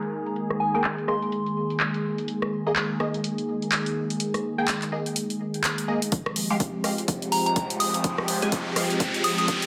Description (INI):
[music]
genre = bass house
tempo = 125 BPM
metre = 4/4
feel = swing 59% on 16ths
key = F minor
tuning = A4 = 440 Hz
[part]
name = sweeping resonant pad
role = sustained chords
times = 0.0-9.7 s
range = Eb3 to Ab4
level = -30 LUFS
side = equal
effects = chorus, vintage 12-bit sampler grit, sidechain pumping
[part]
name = house drum kit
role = drums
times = 0.0-9.7 s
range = handclaps, hi-hat, rim click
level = -30 LUFS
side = equal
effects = small room ambience
[part]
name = soft synth bell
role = melody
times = 0.6-1.8, 7.3-9.4 s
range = Ab5 to Eb6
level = -30 LUFS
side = equal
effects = chorus, delay
[part]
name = band-passed chord stab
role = stabs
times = 0.7-8.8 s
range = Ab3 to Ab5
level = -32 LUFS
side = equal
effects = phaser, analog chorus, sidechain pumping, delay
[part]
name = electronic kick drum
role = drums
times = 6.1-9.6 s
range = none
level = -31 LUFS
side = equal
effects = high-pass filter on kick, small room ambience
[part]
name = riser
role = sound effects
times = 7.0-9.7 s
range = none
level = -33 LUFS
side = equal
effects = none
[sound]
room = moderate plate reverb, RT60 1.3 s, digital ambience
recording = low-pass filter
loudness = -26 LUFS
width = mono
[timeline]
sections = 0.0-6.1 A section; 6.1-9.7 B section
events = filter sweep on drum 0.0-6.1; filter sweep on analog synth pad 0.0-6.1; filter sweep 0.0-6.1; build-up 6.1-9.7; riser 7.0-9.7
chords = 0.0 Ebsus4; 6.1 Fmadd9